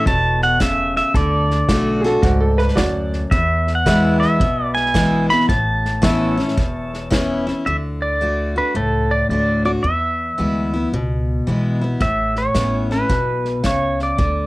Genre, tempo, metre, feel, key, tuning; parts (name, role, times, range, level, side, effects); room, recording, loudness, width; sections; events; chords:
honky-tonk and classic country; 110 BPM; 4/4; swing 65% on 8ths; D major from 7.7 s; A4 = 437 Hz
pedal steel guitar; melody; 0.0-14.5 s; A4 to B5; -20 LUFS; right 1 dB; cassette tape
picked steel-string acoustic guitar; accompaniment; 0.0-14.5 s; E2 to F#4; -20 LUFS; left 1 dB; cassette tape
pedal steel guitar; sustained chords; 0.0-7.6 s; A4 to E5; -28 LUFS; equal; lush chorus, cassette tape
upright bass; bass; 0.1-14.5 s; E1 to E2; -24 LUFS; equal
unplugged drum kit; drums; 0.1-7.5, 12.0-14.4 s; hi-hat, kick drum, snare drum; -21 LUFS; equal; cassette tape
bright upright piano; second line; 2.0-3.2 s; F#4 to D5; -20 LUFS; right 2 dB; cassette tape
moderate small room reverb, RT60 0.5 s; home recording on cassette; -16 LUFS; side -19 dB against mid
0.0-7.7 A section; 7.7-14.5 B section
0.0 A; 1.1 D; 3.3 E; 5.5 Aadd9; 7.7 D; 9.8 E; 12.0 Aadd9